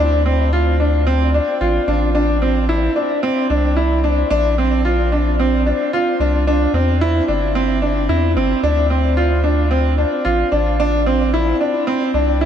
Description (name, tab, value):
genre	piano and strings electronica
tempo	111 BPM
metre	4/4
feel	straight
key	D minor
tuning	A4 = 440 Hz
part	clear concert grand piano	riff	0.0-12.5 s	C4 to F4	-16 LUFS	equal	wide subtle chorus, diffuse ambient delay
part	round analog bass	bass	0.0-12.5 s	G1 to E2	-18 LUFS	equal	none
room	wet huge ambient reverb, RT60 7.2 s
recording	dreamy mix soaked in reverb, faint mains hum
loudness	-14 LUFS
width	side -9 dB against mid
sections	0.0-12.5 A section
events	none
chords	0.0 Dm7; 2.1 Am; 4.3 Bb; 6.5 C; 8.6 Dm7; 10.8 Am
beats	0.53 1.07 1.61 | 2.15 2.69 3.23 3.77 | 4.31 4.85 5.39 5.93 | 6.47 7.01 7.55 8.10 | 8.63 9.18 9.72 10.26 | 10.80 11.34 11.88 12.42